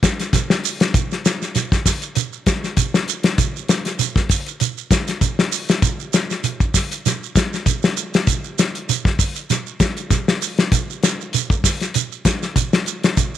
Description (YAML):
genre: afrobeat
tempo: 98 BPM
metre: 4/4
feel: swing 55% on 16ths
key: none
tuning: none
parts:
  - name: warm soul drum kit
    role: drums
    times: 0.0-13.3 s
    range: hi-hat, kick drum, snare drum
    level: -18 LUFS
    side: left 2 dB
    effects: none
  - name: shekere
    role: percussion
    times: 0.0-13.4 s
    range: none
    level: -22 LUFS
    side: right 10 dB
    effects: none
room: moderate spring reverb, RT60 2.2 s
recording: 1960s-style stereo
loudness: -17 LUFS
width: side -11 dB against mid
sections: 0.0-13.4 A section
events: none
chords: none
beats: 0.34 | 0.95 1.56 2.17 2.78 | 3.39 4.00 4.61 5.22 | 5.83 6.44 7.05 7.66 | 8.28 8.89 9.50 10.11 | 10.73 11.34 11.95 12.57 | 13.18